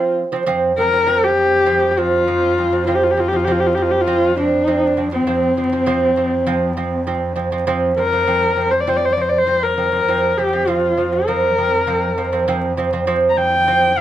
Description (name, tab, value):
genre	mongolian traditional, Mongolian folk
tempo	100 BPM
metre	4/4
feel	straight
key	F zhi mode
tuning	A4 = 439 Hz
part	warm horsehead fiddle	melody	0.0-14.0 s	C4 to Bb5	-17 LUFS	left 2 dB	none
part	lute	arpeggios	0.0-14.0 s	F3 to C4	-19 LUFS	right 4 dB	none
part	rich cello	drone	0.5-14.0 s	F2	-27 LUFS	left 1 dB	none
room	moderate small room reverb, RT60 0.5 s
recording	vinyl crackle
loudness	-15 LUFS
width	side -12 dB against mid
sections	0.5-14.0 A section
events	none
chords	0.5 F5